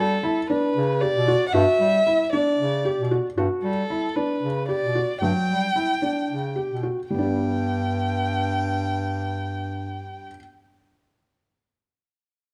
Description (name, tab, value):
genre	contemporary instrumental, chamber music in an uneven meter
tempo	224 BPM (eighths)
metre	7/8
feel	uneven beats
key	G lydian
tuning	A4 = 436 Hz
part	dark violin	melody	0.0-10.3 s	A4 to G5	-27 LUFS	equal	none
part	warm bass clarinet	bass	0.0-10.3 s	G2 to G3	-29 LUFS	equal	none
part	felt-muted upright piano	arpeggios	0.2-10.4 s	F#3 to G4	-28 LUFS	equal	none
room	moderate recital hall reverb, RT60 1.4 s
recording	close, detailed microphones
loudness	-23 LUFS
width	mono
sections	0.0-7.1 A section; 7.1-11.0 B section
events	slowing down 3.4-7.1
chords	0.0 Gmaj7; 7.1 G